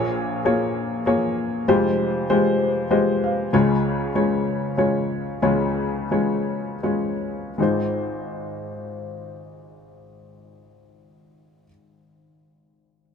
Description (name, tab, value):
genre	folk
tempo	77-98 BPM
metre	3/4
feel	straight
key	Ab major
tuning	A4 = 441 Hz
part	warm upright piano	melody	0.0-13.1 s	F1 to F5	-20 LUFS	left 2 dB	none
room	light reverb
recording	none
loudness	-20 LUFS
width	side -6 dB against mid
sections	0.0-7.6 A section; 7.6-12.2 B section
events	upright piano fill 2.6-3.5; slowing down 3.5-7.6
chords	0.0 Bbm7; 1.7 Fmadd9; 3.5 Db; 7.6 Ab6